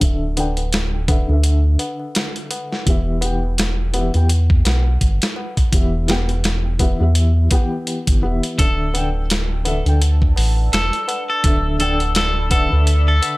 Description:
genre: trip hop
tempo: 84 BPM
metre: 4/4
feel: swing 57% on 16ths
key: unclear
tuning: A4 = 441 Hz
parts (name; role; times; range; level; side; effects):
- felt-muted upright piano; accompaniment; 0.0-13.4 s; D3 to G5; -25 LUFS; left 1 dB; tremolo, low-pass filter, tape echo
- round analog bass; bass; 0.0-13.2 s; D1 to E2; -17 LUFS; equal; none
- dusty soul sampler-style drum kit; drums; 0.0-13.4 s; hi-hat, kick drum, snare drum; -19 LUFS; equal; none
- tabla; percussion; 0.0-13.4 s; none; -31 LUFS; left 2 dB; none
- clean electric guitar; melody; 8.6-13.4 s; A4; -22 LUFS; left 1 dB; tape echo
- deep dark ambient pad; sustained chords; 9.8-13.4 s; D5 to E6; -30 LUFS; left 1 dB; chorus, built-in reverb
room: digital ambience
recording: none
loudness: -15 LUFS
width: side -21 dB against mid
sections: 0.0-13.4 A section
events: filter sweep on felt piano 0.0-13.4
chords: 0.0 Dsus2; 2.9 Em; 8.6 Dsus2

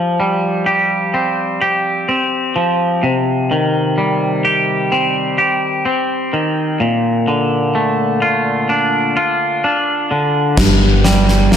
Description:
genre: post-rock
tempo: 64 BPM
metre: 4/4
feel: straight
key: unclear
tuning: A4 = 438 Hz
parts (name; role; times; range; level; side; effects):
- twangy electric guitar; arpeggios; 0.0-11.6 s; G2 to G4; -14 LUFS; equal; lush chorus, analog delay
- growling fingered electric bass; bass; 10.6-11.6 s; G1; -14 LUFS; equal; overdrive
- huge arena drum kit; drums; 10.6-11.6 s; crash cymbal, kick drum, snare drum; -14 LUFS; left 1 dB; none
room: moderate large studio reverb, RT60 1.1 s, studio ambience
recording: none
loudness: -13 LUFS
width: side -8 dB against mid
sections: 0.0-10.6 A section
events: none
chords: 0.0 Fsus2; 3.0 Cm; 6.8 Bbmaj7; 10.6 N.C.

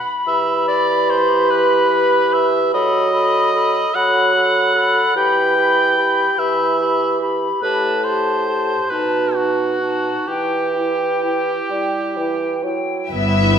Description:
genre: classical, slow romantic movement for symphony orchestra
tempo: 42-50 BPM (dotted quarters)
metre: 6/8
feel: rubato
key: E minor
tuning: A4 = 439 Hz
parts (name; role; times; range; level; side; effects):
- silver concert flute; second line; 0.0-13.1 s; G5 to B5; -22 LUFS; left 4 dB; none
- clear clarinet; second line; 0.3-13.1 s; D#4 to A4; -25 LUFS; left 2 dB; none
- clear cor anglais; second line; 0.3-12.6 s; F#4 to G5; -19 LUFS; right 1 dB; none
- mellow bassoon; accompaniment; 0.3-13.1 s; A2 to G3; -20 LUFS; right 3 dB; none
- rich chamber violin section; melody; 13.1-13.6 s; E5; -20 LUFS; left 5 dB; none
- dark chamber violin section; second line; 13.1-13.6 s; B4 to E5; -22 LUFS; left 6 dB; none
- rich chamber viola section; accompaniment; 13.1-13.6 s; B3 to E4; -21 LUFS; right 2 dB; none
- rich chamber cello section; bass; 13.1-13.6 s; G2; -18 LUFS; equal; none
- rich chamber double bass section; bass; 13.1-13.6 s; G1; -21 LUFS; equal; none
room: wet scoring stage reverb, RT60 1.4 s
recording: minimal, uncompressed stereo recording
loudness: -15 LUFS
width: side -8 dB against mid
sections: 0.0-13.1 A section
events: none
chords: 0.3 Em; 2.7 B7/F#; 5.2 Em; 7.6 Am7; 8.9 B7; 10.3 Em

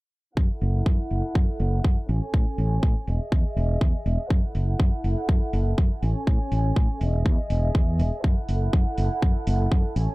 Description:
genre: filtered disco house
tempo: 122 BPM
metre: 4/4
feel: swing 56% on 16ths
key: F# dorian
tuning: A4 = 440 Hz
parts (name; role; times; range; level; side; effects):
- dark studio violin section; sustained chords; 0.4-10.1 s; C#4 to G#5; -32 LUFS; right 1 dB; sidechain pumping, low-pass filter
- fingered electric bass; bass; 0.4-10.1 s; E1 to A2; -24 LUFS; equal; sidechain pumping, low-pass filter
- electronic kick drum; drums; 0.4-9.8 s; none; -21 LUFS; equal; none
- tube shaker; percussion; 0.4-10.1 s; none; barely audible; none; none
- electronic hi-hat; drums; 0.6-10.1 s; none; -48 LUFS; right 2 dB; sidechain pumping on hats, low-pass filter on hats, low-pass filter on room
room: little or no reverb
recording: none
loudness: -21 LUFS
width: side -22 dB against mid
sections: 0.4-10.1 A section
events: filter sweep on drum 0.4-10.1; filter sweep 0.4-10.1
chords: 0.4 F#m7; 2.1 Amaj7; 3.1 Emaj7; 4.3 F#m7; 6.0 Amaj7; 7.0 Emaj7; 8.2 F#m7

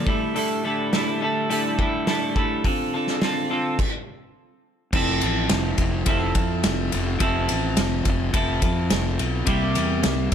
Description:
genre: indie rock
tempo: 105 BPM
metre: 4/4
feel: straight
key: unclear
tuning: A4 = 439 Hz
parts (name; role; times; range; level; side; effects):
- clean electric guitar; riff; 0.0-10.3 s; A2 to A4; -23 LUFS; equal; double-tracked left and right
- loose indie drum kit; drums; 0.1-10.3 s; crash cymbal, hi-hat, kick drum, ride cymbal, snare drum; -24 LUFS; equal; none
- fuzz fingered electric bass; bass; 4.9-10.3 s; F1 to F2; -25 LUFS; equal; overdrive
room: studio ambience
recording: none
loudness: -20 LUFS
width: side -8 dB against mid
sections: 0.0-4.9 A section; 4.9-10.3 B section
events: stop 3.8-4.9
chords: 0.1 A7sus4; 2.6 Dm7; 4.9 Fmaj7; 9.5 C7

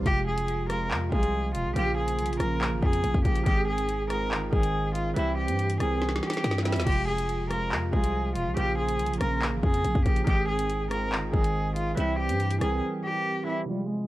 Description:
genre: hip hop, drill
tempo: 141 BPM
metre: 4/4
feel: half-time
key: F minor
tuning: A4 = 440 Hz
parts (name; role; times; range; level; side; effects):
- bell-like tine electric piano; accompaniment; 0.0-14.1 s; C3 to Bb4; -32 LUFS; right 3 dB; phaser
- growling 808-style bass; bass; 0.0-12.8 s; Eb1 to G2; -30 LUFS; equal; none
- dark cello; melody; 0.1-14.1 s; G3 to Bb4; -29 LUFS; equal; none
- drill drum kit; drums; 0.1-14.1 s; crash cymbal, handclaps, hi-hat, kick drum, rim click, snare drum; -28 LUFS; equal; none
room: little or no reverb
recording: dark, warm production, low-pass filter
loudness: -24 LUFS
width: side -16 dB against mid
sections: 0.1-13.7 A section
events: drum fill 6.0-6.9; break 12.8-13.7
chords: 0.1 Fm; 1.8 Bbm; 3.5 Ab; 5.2 C; 6.9 Fm; 8.6 Bbm; 10.3 Ab; 12.0 C

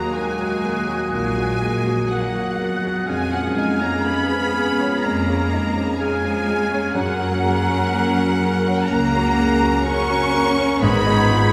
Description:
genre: cinematic, emotional film score for orchestra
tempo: 62 BPM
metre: 4/4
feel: rubato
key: unclear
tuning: A4 = 440 Hz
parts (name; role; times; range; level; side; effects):
- rich symphonic violin section; melody; 0.0-11.5 s; Gb5 to Db6; -30 LUFS; equal; none
- bright large flute ensemble; second line; 0.0-11.5 s; Bb5 to Ab6; -31 LUFS; equal; none
- bright studio violin section; second line; 0.0-11.5 s; Gb5 to Db6; -32 LUFS; equal; none
- clear clarinet; second line; 0.0-11.5 s; Bb3 to Eb4; -31 LUFS; equal; none
- clear oboe; second line; 0.0-11.5 s; Eb5 to Gb5; -31 LUFS; equal; none
- felt-muted upright piano; accompaniment; 0.0-11.5 s; Eb2 to Db5; -27 LUFS; equal; none
- rich studio viola section; accompaniment; 0.0-11.5 s; Db3 to Bb4; -29 LUFS; equal; none
- dark French horn section; sustained chords; 0.0-11.5 s; Gb3 to Bb4; -30 LUFS; equal; none
- clear studio cello section; bass; 0.0-11.5 s; Gb3 to Db4; -28 LUFS; equal; none
- rich studio double bass section; bass; 1.1-11.5 s; Ab1 to Gb2; -29 LUFS; equal; none
room: wet cathedral reverb, RT60 4.7 s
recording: recorded in a church or concert hall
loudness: -20 LUFS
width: mono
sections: 0.0-11.5 A section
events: none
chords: 0.0 Ebm; 3.1 Db/F; 7.0 Gb; 10.8 Abm

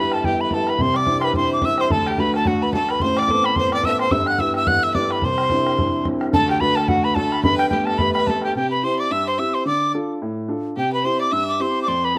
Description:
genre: celtic folk, Celtic reel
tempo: 216 BPM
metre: 4/4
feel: swing 57% on 8ths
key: G major, C major from 8.6 s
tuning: A4 = 438 Hz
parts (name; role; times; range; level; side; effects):
- mellow tin whistle; melody; 0.0-12.2 s; F#5 to F#6; -23 LUFS; equal; slapback echo
- clear fiddle; second line; 0.0-12.2 s; F#4 to F#5; -29 LUFS; equal; none
- warm concert grand piano; accompaniment; 0.0-12.2 s; G1 to A4; -25 LUFS; equal; none
- bodhran; percussion; 0.0-8.5 s; none; -29 LUFS; equal; none
room: little or no reverb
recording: recorded outdoors, with no room sound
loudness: -20 LUFS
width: mono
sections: 0.0-8.6 A section; 8.6-12.2 B section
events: none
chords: 0.0 G6; 0.8 Cadd9; 1.9 D; 3.0 Amadd9; 4.1 G6; 5.2 Cadd9; 6.3 D; 7.4 Gadd9; 8.6 C; 9.7 Dm; 10.8 C

